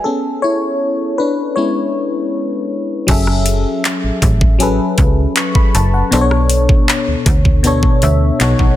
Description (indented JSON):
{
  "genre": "contemporary R&B",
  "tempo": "79 BPM",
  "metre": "4/4",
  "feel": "straight",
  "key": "F# minor",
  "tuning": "A4 = 439 Hz",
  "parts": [
    { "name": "FM electric piano", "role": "accompaniment", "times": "0.0-8.8 s", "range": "B2 to C#6", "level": "-16 LUFS", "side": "left 2 dB", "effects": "chorus" },
    { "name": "slap-like FM bass", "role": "bass", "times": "3.1-8.7 s", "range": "F#1 to D2", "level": "-15 LUFS", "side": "equal", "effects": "none" },
    { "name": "trap drum kit", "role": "drums", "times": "3.1-8.8 s", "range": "crash cymbal, handclaps, hi-hat, kick drum, rim click", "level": "-14 LUFS", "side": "equal", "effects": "soft clipping on snare" }
  ],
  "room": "little or no reverb",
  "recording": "dense, heavily limited modern master",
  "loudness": "-12 LUFS",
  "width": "side -13 dB against mid",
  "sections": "0.0-3.1 A section; 3.1-8.8 B section",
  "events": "FM electric piano solo 0.0-3.1; break 0.0-3.1; FM electric piano fill 7.6-8.8",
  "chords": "0.0 Amaj9; 3.1 F#m7; 6.1 Bm7",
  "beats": "| 0.04 0.80 1.56 2.32 | 3.08 3.84 4.60 5.36 | 6.12 6.88 7.64 8.40"
}